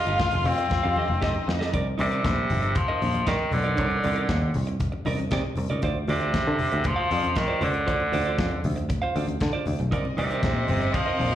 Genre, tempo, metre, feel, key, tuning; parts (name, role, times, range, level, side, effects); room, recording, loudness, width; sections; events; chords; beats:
disco; 117 BPM; 4/4; straight; C dorian; A4 = 443 Hz
raspy tenor saxophone; melody; 0.0-11.3 s; C3 to F4; -26 LUFS; left 1 dB; slapback echo
dark studio violin section; second line; 0.0-1.7, 9.9-11.3 s; C4 to F5; -30 LUFS; left 2 dB; slapback echo
clean electric guitar; accompaniment; 0.0-11.3 s; Eb4 to F5; -32 LUFS; right 5 dB; slapback echo
picked electric bass; bass; 0.1-11.3 s; F1 to D3; -27 LUFS; equal
modern studio drum kit; drums; 0.1-11.3 s; hi-hat, kick drum, snare drum; -30 LUFS; equal
congas; percussion; 0.2-11.3 s; -33 LUFS; left 2 dB
small room reverb; live gig heard through the venue's PA, club reverb; -22 LUFS; side -11 dB against mid
0.0-1.7 A section; 1.7-11.3 B section
drum fill 0.7-1.7
0.0 F9; 1.7 Cm9; 5.8 Dm7; 9.9 Cm9
0.20 0.71 1.22 | 1.73 2.24 2.76 3.27 | 3.78 4.29 4.80 5.32 | 5.83 6.34 6.85 7.36 | 7.87 8.38 8.90 9.41 | 9.92 10.43 10.94